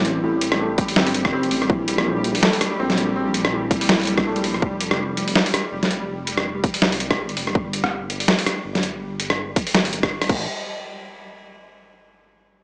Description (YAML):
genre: half-time drum and bass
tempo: 164 BPM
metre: 4/4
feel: swing 57% on 16ths, half-time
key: unclear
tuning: A4 = 441 Hz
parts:
  - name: felt-muted upright piano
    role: arpeggios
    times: 0.0-4.6 s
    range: A2 to C4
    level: -24 LUFS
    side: equal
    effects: analog delay
  - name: dark detuned saw bass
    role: bass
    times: 0.0-10.5 s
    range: F1 to C2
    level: -29 LUFS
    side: equal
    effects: tube saturation
  - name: boom bap sampler-style drum kit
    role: drums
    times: 0.0-10.4 s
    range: crash cymbal, hi-hat, rim click, snare drum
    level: -20 LUFS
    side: equal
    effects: none
  - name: pulsing gated texture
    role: texture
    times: 0.0-10.5 s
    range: G3 to G4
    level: -29 LUFS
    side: equal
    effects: chorus, built-in reverb
  - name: electronic kick drum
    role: drums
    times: 0.8-10.4 s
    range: none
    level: -20 LUFS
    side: equal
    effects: overdrive
room: light reverb, digital ambience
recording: dry, gritty hardware recording, small speaker sound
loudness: -18 LUFS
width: side -36 dB against mid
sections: 0.0-10.5 A section; 10.5-11.9 B section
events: filter sweep on detuned saw bass 0.0-10.5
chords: 0.0 Am; 1.7 Gm69/Bb; 4.6 F5; 7.6 N.C.; 10.3 Gsus2/A; 10.5 N.C.